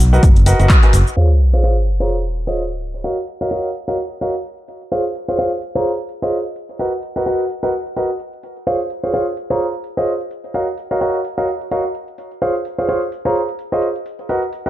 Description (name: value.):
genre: piano house.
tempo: 128 BPM.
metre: 4/4.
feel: swing 57% on 16ths.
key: Db major.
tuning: A4 = 442 Hz.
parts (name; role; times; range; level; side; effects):
fingered electric bass; bass; 0.0-1.0 s; Gb1 to Cb2; -12 LUFS; equal; tube saturation, sidechain pumping.
punchy analog drum machine; drums; 0.0-14.7 s; cabasa, handclaps, hi-hat; -21 LUFS; left 1 dB; low-pass filter on snare, low-pass filter on hats, low-pass filter on perc.
clear concert grand piano; riff; 0.1-14.7 s; F4 to Bb5; -19 LUFS; right 1 dB; sidechain pumping, low-pass filter, tape echo.
electronic kick drum; drums; 0.2-0.8 s; none; -11 LUFS; equal; none.
sub drop; sound effects; 1.2-3.0 s; none; -15 LUFS; equal; none.
room: light reverb, digital ambience.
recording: dark, warm production, low-pass filter.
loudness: -16 LUFS.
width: side -14 dB against mid.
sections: 0.0-1.2 A section; 1.2-14.7 B section.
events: band accent 0.7; impact 1.2-3.0; filter sweep on drum 1.2-14.7; filter sweep 1.2-14.7.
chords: 0.0 Cbmaj7; 1.2 Dbmaj7; 3.0 Ebm9; 4.7 Dbmaj7; 6.8 Cbmaj7; 8.7 Dbmaj7; 10.5 Ebm9; 12.2 Dbmaj7.